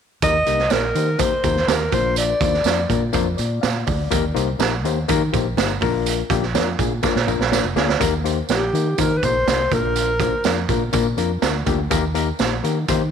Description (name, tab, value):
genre	uptempo 1960s-style soul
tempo	123 BPM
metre	4/4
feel	straight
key	Eb major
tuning	A4 = 440 Hz
part	warm alto saxophone	melody	0.2-3.1, 8.5-10.7 s	G4 to Eb5	-21 LUFS	equal	tape echo
part	overdriven reed electric piano	accompaniment	0.2-13.0 s	Bb3 to F5	-24 LUFS	left 14 dB	none
part	fingered electric bass	bass	0.2-13.1 s	F1 to Eb3	-24 LUFS	equal	none
part	raw garage drum kit	drums	0.2-13.0 s	hi-hat, kick drum, snare drum	-22 LUFS	right 6 dB	none
part	congas	percussion	0.2-13.0 s	none	-34 LUFS	right 7 dB	none
part	tambourine	percussion	0.2-13.0 s	none	-33 LUFS	right 13 dB	none
room	light reverb, studio reverb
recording	1960s-style stereo with parts hard left and right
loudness	-17 LUFS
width	side -7 dB against mid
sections	0.2-8.0 A section; 8.0-13.1 B section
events	drum fill 7.0-8.0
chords	0.2 Eb; 1.9 Bb; 4.1 Eb; 5.8 Bb; 8.0 Eb; 9.7 Bb; 11.9 Eb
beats	| 0.23 0.71 1.20 1.69 | 2.17 2.66 3.14 3.63 | 4.12 4.60 5.09 5.57 | 6.06 6.55 7.03 7.52 | 8.01 8.49 8.98 9.47 | 9.96 10.45 10.93 11.42 | 11.91 12.40 12.89